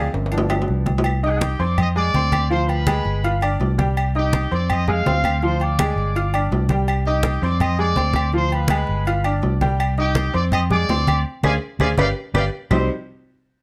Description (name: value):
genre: latin, salsa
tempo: 165 BPM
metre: 4/4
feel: straight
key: C harmonic minor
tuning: A4 = 439 Hz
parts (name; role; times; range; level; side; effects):
- bright upright piano; accompaniment; 0.0-12.9 s; C3 to F6; -27 LUFS; equal; none
- fingered electric bass; bass; 0.0-12.9 s; G1 to F2; -24 LUFS; equal; none
- congas; percussion; 0.1-12.8 s; none; -26 LUFS; equal; none
- timbales and agogo bells; percussion; 0.1-12.8 s; none; -29 LUFS; equal; none
- claves; percussion; 0.5-12.8 s; none; -35 LUFS; equal; none
- bright trumpet section; melody; 1.2-12.9 s; G4 to Eb6; -27 LUFS; equal; none
room: light reverb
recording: close, detailed microphones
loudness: -20 LUFS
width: mono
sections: 0.0-1.0 A section; 1.0-12.7 B section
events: upright piano solo 0.0-1.0; drum fill 0.1-1.0, 11.3-12.7; band accent 11.3-12.7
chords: 0.3 G7; 1.0 Cm; 1.8 Fm; 2.5 Dm7b5; 3.2 G7; 4.0 Cm; 4.7 Fm; 5.4 Dm7b5; 6.2 G5; 6.9 Cm; 7.6 Fm; 8.3 Dm7b5; 9.1 G7; 9.8 Cm; 10.5 Fm; 11.3 Dm7b5; 12.0 G7; 12.7 Cm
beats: 0.32 0.68 | 1.05 1.41 1.78 2.14 | 2.51 2.87 3.24 3.60 | 3.97 4.33 4.70 5.06 | 5.42 5.79 6.15 6.52 | 6.88 7.25 7.61 7.98 | 8.34 8.71 9.07 9.43 | 9.80 10.16 10.53 10.89 | 11.26 11.62 11.99 12.35 | 12.72